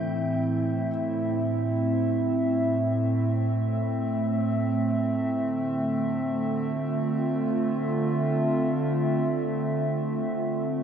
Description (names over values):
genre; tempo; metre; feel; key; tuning
ambient; free time; none; none; A minor; A4 = 441 Hz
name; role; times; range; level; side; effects
warbly tape-like pad; sustained chords; 0.0-10.8 s; A2 to E5; -24 LUFS; right 1 dB; chorus, built-in reverb
felt-muted upright piano; arpeggios; 0.0-0.9 s; E3; -38 LUFS; left 2 dB; tape echo
room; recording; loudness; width
wet cathedral reverb, RT60 5.8 s; dark, warm production; -24 LUFS; side -8 dB against mid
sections
0.0-10.8 A section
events
none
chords
0.0 Am; 5.3 Dm7